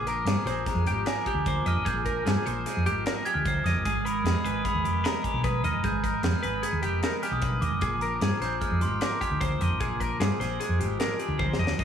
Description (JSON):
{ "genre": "math rock and midwest emo", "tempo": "151 BPM", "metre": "5/4", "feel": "straight", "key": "unclear", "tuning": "A4 = 442 Hz", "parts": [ { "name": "glockenspiel with soft plastic mallets", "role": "melody", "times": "0.0-11.4 s", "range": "Ab5 to Ab6", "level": "-31 LUFS", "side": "equal", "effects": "tape echo" }, { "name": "clean electric guitar", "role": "accompaniment", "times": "0.0-11.8 s", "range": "Eb2 to Ab4", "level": "-35 LUFS", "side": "right 9 dB", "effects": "tape echo" }, { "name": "twelve-string electric guitar", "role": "arpeggios", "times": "0.0-11.8 s", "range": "G4 to Eb5", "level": "-32 LUFS", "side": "left 3 dB", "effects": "tape echo" }, { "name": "hollow-body short-scale fingered electric bass", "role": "bass", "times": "0.0-11.8 s", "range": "F1 to G2", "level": "-28 LUFS", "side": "equal", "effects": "none" }, { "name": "crisp fusion drum kit", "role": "drums", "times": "0.1-11.8 s", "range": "hi-hat, kick drum, snare drum, toms", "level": "-32 LUFS", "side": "equal", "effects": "tape echo" } ], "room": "small room reverb", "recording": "echo-heavy mix, small room ambience", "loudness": "-24 LUFS", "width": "side -8 dB against mid", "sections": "0.0-11.8 A section", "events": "drum fill 11.4-11.8", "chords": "0.0 Bb9; 3.9 Abmadd9; 7.8 Bb9" }